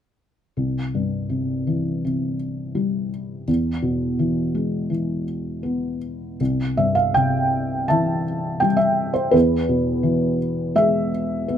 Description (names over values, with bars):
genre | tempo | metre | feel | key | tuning
classical, lyrical solo piano | 83 BPM | 4/4 | rubato | C major | A4 = 440 Hz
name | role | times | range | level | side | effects
felt-muted upright piano | solo | 0.6-11.6 s | C2 to A5 | -20 LUFS | equal | none
room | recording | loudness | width
light reverb | none | -19 LUFS | side -9 dB against mid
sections
0.6-6.4 A section; 6.4-11.6 B section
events
none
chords
0.6 C; 3.5 E; 6.4 C; 9.3 E